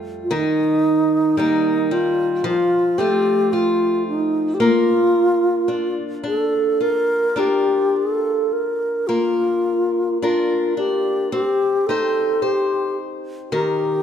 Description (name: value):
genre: celtic folk, Celtic slow air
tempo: 55 BPM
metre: 4/4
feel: uneven beats, rubato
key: unclear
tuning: A4 = 440 Hz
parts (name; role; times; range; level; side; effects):
- picked old ladder-braced acoustic guitar; accompaniment; 0.0-14.0 s; F2 to C5; -23 LUFS; left 2 dB; none
- bright wooden-headed alto flute; melody; 0.2-14.0 s; Eb4 to Bb4; -18 LUFS; equal; none
room: moderate concert hall reverb, RT60 1.8 s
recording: minimal, uncompressed stereo recording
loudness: -17 LUFS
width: side -8 dB against mid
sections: 0.0-14.0 A section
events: none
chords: 0.3 Eb; 2.4 F; 4.6 Bb; 11.3 Cm; 13.5 Eb